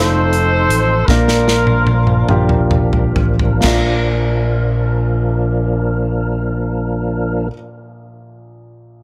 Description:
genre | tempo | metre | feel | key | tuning
slow gospel | 41-56 BPM (dotted quarters) | 6/8 | straight | Bb major | A4 = 440 Hz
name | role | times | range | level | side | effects
warm horn section | melody | 0.0-2.7 s | D4 to C5 | -20 LUFS | equal | none
warm upright piano | accompaniment | 0.0-9.0 s | Bb1 to D5 | -25 LUFS | equal | none
percussive tonewheel organ | sustained chords | 0.0-7.5 s | F3 to Bb4 | -23 LUFS | equal | slow rotary speaker, overdrive, chorus vibrato
fingered electric bass | bass | 0.0-7.5 s | F1 to Bb1 | -20 LUFS | equal | none
natural country drum kit | drums | 0.3-3.9 s | crash cymbal, hi-hat, kick drum, snare drum, toms | -20 LUFS | equal | none
room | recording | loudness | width
studio ambience | none | -15 LUFS | mono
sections
0.0-3.6 A section; 3.6-9.0 B section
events
slowing down 0.0-3.6; drum fill 1.1-3.6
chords
0.0 F7; 1.1 Bb

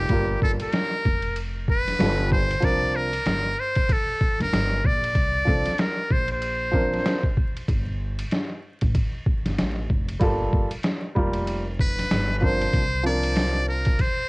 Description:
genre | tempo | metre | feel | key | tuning
hip hop, jazz-hop | 95 BPM | 4/4 | swing 59% on 16ths | G minor | A4 = 440 Hz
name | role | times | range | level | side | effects
trumpet with metal mute | melody | 0.0-7.3, 11.8-14.3 s | G4 to D5 | -25 LUFS | equal | none
dark baby grand piano | accompaniment | 0.0-14.0 s | F3 to Bb4 | -26 LUFS | right 1 dB | none
upright bass | bass | 0.0-14.0 s | F1 to C2 | -28 LUFS | equal | tube saturation
trip hop sampler-style drum kit | drums | 0.1-14.2 s | hi-hat, kick drum, ride cymbal, snare drum | -24 LUFS | equal | cassette tape
room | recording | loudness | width
light reverb | home recording on cassette, vinyl crackle, nothing above 10.4 kHz | -21 LUFS | side -28 dB against mid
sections
0.0-14.3 A section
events
none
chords
0.0 Gm9; 2.0 G9; 2.6 C9sus4; 7.7 Gm9; 12.1 G5; 12.7 C9sus4

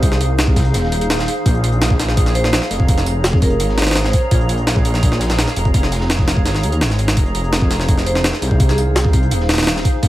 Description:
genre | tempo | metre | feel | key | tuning
drum and bass, jungle | 168 BPM | 4/4 | straight | unclear | A4 = 440 Hz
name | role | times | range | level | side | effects
granular cloud pad | sustained chords | 0.0-10.1 s | Eb4 to Bb5 | -23 LUFS | equal | built-in reverb
detuned saw bass | bass | 0.0-10.1 s | Eb1 to Eb2 | -18 LUFS | equal | none
crunchy breakbeat drum kit | drums | 0.0-10.1 s | hi-hat, shaker, snare drum | -34 LUFS | left 2 dB | none
jungle sampler-style drum kit | drums | 0.0-10.1 s | hi-hat, kick drum, snare drum | -16 LUFS | equal | none
vibraphone with soft mallets | melody | 2.3-4.4, 8.1-9.0 s | Ab4 to C5 | -25 LUFS | right 2 dB | dub echo
room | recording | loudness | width
little or no reverb | vinyl crackle | -13 LUFS | side -15 dB against mid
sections
0.0-10.1 A section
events
none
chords
0.0 Fm7; 1.5 Bbm7; 7.2 Fm7

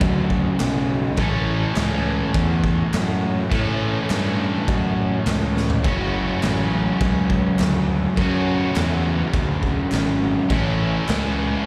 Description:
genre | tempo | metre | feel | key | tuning
garage rock duo or trio | 103 BPM | 4/4 | straight | A major | A4 = 440 Hz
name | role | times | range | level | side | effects
cranked stack guitar | riff | 0.0-11.7 s | F#2 to A4 | -24 LUFS | equal | overdrive
fuzz fingered electric bass | bass | 0.0-11.5 s | F#1 to A2 | -25 LUFS | equal | overdrive
raw garage drum kit | drums | 0.0-11.2 s | crash cymbal, kick drum, snare drum, toms | -27 LUFS | equal | none
group handclap | percussion | 0.6-11.2 s | none | -39 LUFS | equal | none
room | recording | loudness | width
studio reverb | live gig heard through the venue's PA, club reverb | -21 LUFS | mono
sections
0.0-11.7 A section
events
drum fill 5.6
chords
0.0 F#m; 1.2 A; 5.8 F#m; 10.5 A

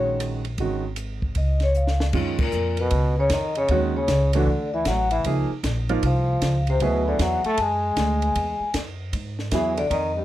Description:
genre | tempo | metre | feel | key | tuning
jazz, small-group swing and bop | 154 BPM | 4/4 | swing 65% on 8ths | unclear | A4 = 440 Hz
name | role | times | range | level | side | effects
vibraphone with medium mallets | melody | 0.0-10.2 s | G4 to A5 | -25 LUFS | left 3 dB | none
warm upright piano | accompaniment | 0.0-9.8 s | Eb3 to Ab4 | -26 LUFS | right 4 dB | none
upright bass | bass | 0.0-10.2 s | Ab1 to G#2 | -24 LUFS | equal | none
compact cocktail drum kit | drums | 0.2-10.0 s | crash cymbal, hi-hat, kick drum, ride cymbal, rim click, snare drum | -30 LUFS | equal | none
bright trombone | second line | 2.4-10.2 s | G2 to A3 | -28 LUFS | right 2 dB | none
room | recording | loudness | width
little or no reverb | close, detailed microphones | -20 LUFS | side -14 dB against mid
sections
0.0-2.1 A section; 2.1-10.2 B section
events
drum fill 1.8-2.1; band accent 2.3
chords
0.0 Ebm7; 0.6 Ab5; 1.4 Dbadd9; 2.1 Gbmaj7; 3.7 Ebm7; 4.5 D5; 5.2 Dbmaj7; 6.8 Dadd9; 8.4 Eadd9

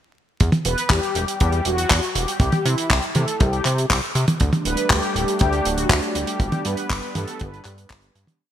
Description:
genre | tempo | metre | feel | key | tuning
italo disco | 120 BPM | 4/4 | straight | G major | A4 = 440 Hz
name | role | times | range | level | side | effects
chorused synth bass | bass | 0.4-8.3 s | D1 to C3 | -23 LUFS | equal | tube saturation
damped 70s drum kit | drums | 0.4-8.4 s | handclaps, hi-hat, toms | -22 LUFS | equal | small room ambience
kick drum | drums | 0.4-8.0 s | none | -19 LUFS | equal | small room ambience
mellow synth brass | melody | 0.7-7.9 s | E4 to B4 | -25 LUFS | left 1 dB | chorus, ping-pong delay
warm analog pad | sustained chords | 4.4-8.4 s | G3 to D4 | -28 LUFS | right 2 dB | chorus
room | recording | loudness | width
moderate lush hall reverb, RT60 2.4 s | bright 1980s-style digital production, vinyl crackle | -18 LUFS | side -10 dB against mid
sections
0.4-8.4 verse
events
fade-out 5.7-8.4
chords
0.4 Em; 2.4 C5; 4.4 Dsus4; 6.4 G

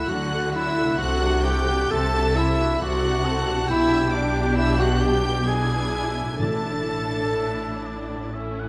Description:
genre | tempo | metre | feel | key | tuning
classical, slow romantic movement for symphony orchestra | 60-70 BPM | 3/4 | rubato | D major | A4 = 442 Hz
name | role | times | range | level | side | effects
warm symphonic violin section | melody | 0.0-8.3 s | D6 to A6 | -35 LUFS | equal | none
clear clarinet | second line | 0.0-8.3 s | D4 to A4 | -31 LUFS | equal | none
warm oboe | second line | 0.0-8.7 s | D5 to A5 | -35 LUFS | equal | none
warm symphonic violin section | second line | 0.0-8.4 s | D5 to A5 | -34 LUFS | equal | none
warm symphonic viola section | accompaniment | 0.0-8.7 s | F#3 to A4 | -33 LUFS | equal | none
mellow French horn section | sustained chords | 0.0-8.3 s | D4 to A4 | -30 LUFS | equal | none
concert harp | arpeggios | 0.0-8.7 s | A2 to A4 | -38 LUFS | equal | none
rich symphonic cello section | bass | 0.1-8.7 s | A2 to D3 | -32 LUFS | equal | none
warm chamber double bass section | bass | 0.1-8.7 s | A1 to D2 | -30 LUFS | equal | none
timpani | percussion | 6.4-7.8 s | A2 | -34 LUFS | equal | none
room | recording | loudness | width
moderate concert hall reverb, RT60 2.6 s | none | -23 LUFS | mono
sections
0.0-8.7 A section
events
none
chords
0.0 D; 1.0 D7/C; 3.7 G/B; 5.5 E7/B; 6.4 Asus4

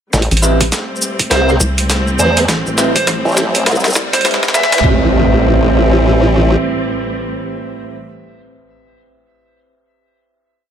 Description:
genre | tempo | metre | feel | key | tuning
glitch hop | 102 BPM | 4/4 | swing 61% on 16ths | A minor | A4 = 444 Hz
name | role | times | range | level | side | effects
rich chamber string section | sustained chords | 0.1-8.0 s | A2 to C4 | -21 LUFS | equal | sidechain pumping
formant-sweep wobble bass | bass | 0.1-6.6 s | A1 to E2 | -13 LUFS | equal | chorus
boom bap sampler-style drum kit | drums | 0.1-4.9 s | hi-hat, shaker, snare drum | -16 LUFS | equal | high-pass filter on snare, high-pass filter on hats, high-pass filter on perc
electronic kick drum | drums | 0.1-5.0 s | none | -18 LUFS | equal | high-pass filter on kick
riser and impact | sound effects | 1.8-8.0 s | none | -24 LUFS | equal | none
rubbery square bass | bass | 0.3-4.5 s | A1 to C2 | -18 LUFS | equal | none
electric guitar through a small old amp | stabs | 0.4-8.0 s | C4 to B4 | -18 LUFS | right 2 dB | vintage 12-bit sampler grit, sidechain pumping, ping-pong delay
dark smooth lead guitar | melody | 1.3-4.8 s | C5 to E5 | -20 LUFS | equal | overdrive, ping-pong delay
room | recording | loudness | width
light reverb, digital ambience | high-pass filter | -11 LUFS | side -8 dB against mid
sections
0.1-4.8 build; 4.8-7.2 final chord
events
build-up 0.1-4.8; drum fill 0.1-4.8; riser 1.8-4.8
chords
0.1 Am7

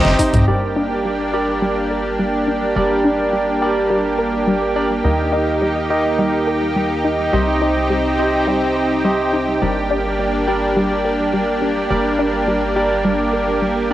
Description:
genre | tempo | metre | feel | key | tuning
synthwave | 105 BPM | 4/4 | straight | G minor | A4 = 441 Hz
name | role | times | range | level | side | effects
lush unison pad | sustained chords | 0.0-13.9 s | Bb3 to G4 | -19 LUFS | right 1 dB | chorus, sidechain pumping, cassette tape, plate reverb
analog pluck | arpeggios | 0.0-13.9 s | G3 to C5 | -23 LUFS | left 1 dB | chorus, phaser, cassette tape, tape echo
barky tine electric piano | stabs | 0.0-13.9 s | C3 to Eb5 | -21 LUFS | right 1 dB | medium stereo tremolo, cassette tape, tape echo
tight sequencer bass | bass | 0.1-13.9 s | G1 to Eb2 | -26 LUFS | equal | none
room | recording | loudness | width
moderate studio reverb, RT60 0.5 s | home recording on cassette | -15 LUFS | side -14 dB against mid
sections
0.5-13.9 A section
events
filter sweep on synth arpeggio sound 0.5-13.9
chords
0.5 Gm; 5.0 Eb; 7.3 Cm; 9.6 Gm

